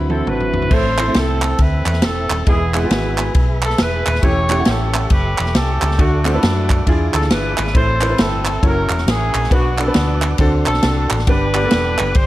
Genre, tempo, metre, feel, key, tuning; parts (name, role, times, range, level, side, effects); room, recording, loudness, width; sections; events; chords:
uptempo gospel; 136 BPM; 4/4; swing 62% on 8ths; A4 = 440 Hz
clear concert grand piano; accompaniment; 0.0-12.1 s; G2 to A5; -22 LUFS; right 1 dB
tonewheel organ; sustained chords; 0.0-12.3 s; D3 to E6; -28 LUFS; right 2 dB; slow rotary speaker
warm studio string section; sustained chords; 0.0-0.7 s; C4 to B5; -36 LUFS; left 2 dB
hollow-body short-scale fingered electric bass; bass; 0.0-12.3 s; Eb1 to F#2; -19 LUFS; equal
warm horn section; melody; 0.1-12.3 s; A3 to C#5; -21 LUFS; equal
swinging big-band drum kit; drums; 0.1-12.3 s; crash cymbal, kick drum, ride cymbal, snare drum, toms; -18 LUFS; equal
group handclap; percussion; 1.0-12.1 s; -23 LUFS; right 4 dB
small room ambience; dark, warm production; -14 LUFS; side -16 dB against mid
0.7-12.3 A section
drum fill 0.0-0.7
0.0 D13; 0.7 Am; 2.5 E; 4.2 A7/E; 6.0 D; 6.9 E7b9; 7.8 Am; 8.6 F#7; 9.5 Bm; 10.4 D7; 11.3 G